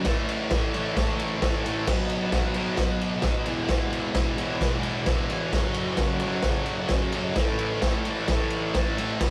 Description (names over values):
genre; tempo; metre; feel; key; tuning
garage rock duo or trio; 131 BPM; 4/4; straight; unclear; A4 = 439 Hz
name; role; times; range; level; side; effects
overdriven combo organ; sustained chords; 0.0-9.3 s; D#4 to G#5; -40 LUFS; equal; none
thick fuzz guitar; riff; 0.0-9.3 s; E2 to B3; -30 LUFS; equal; distortion
raw garage drum kit; drums; 0.0-9.3 s; crash cymbal, kick drum, ride cymbal, snare drum; -28 LUFS; equal; none
room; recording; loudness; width
light reverb; rough rehearsal-room recording; -26 LUFS; mono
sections
0.0-9.3 A section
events
transistor combo organ fill 4.9-5.5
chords
0.1 A; 1.9 B; 3.5 E; 5.5 F#m; 7.4 A